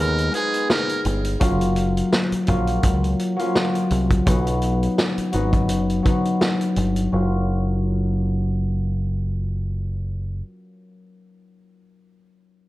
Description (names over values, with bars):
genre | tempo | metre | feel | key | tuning
hip hop, boom-bap hip-hop | 84 BPM | 4/4 | swing 55% on 16ths | F# major | A4 = 440 Hz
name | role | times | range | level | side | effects
trumpet with metal mute | melody | 0.0-1.0 s | G#4 to A#4 | -25 LUFS | right 2 dB | high-pass filter, low-pass filter, digital delay
concert harp | accompaniment | 0.0-10.8 s | F#3 to G#4 | -22 LUFS | left 1 dB | high-pass filter, low-pass filter
deep dub picked electric bass | bass | 0.0-10.4 s | F#1 to D#2 | -23 LUFS | equal | none
vintage drum kit | drums | 0.2-7.1 s | hi-hat, kick drum, snare drum | -23 LUFS | equal | none
room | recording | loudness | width
light reverb, small room ambience | none | -19 LUFS | side -17 dB against mid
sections
0.0-1.4 A section; 1.4-7.1 B section; 7.1-10.0 C section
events
break 0.0-1.4; filter sweep on harp 1.4-7.1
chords
0.0 G#m; 1.4 F#maj7; 4.3 Badd9; 7.1 F#maj7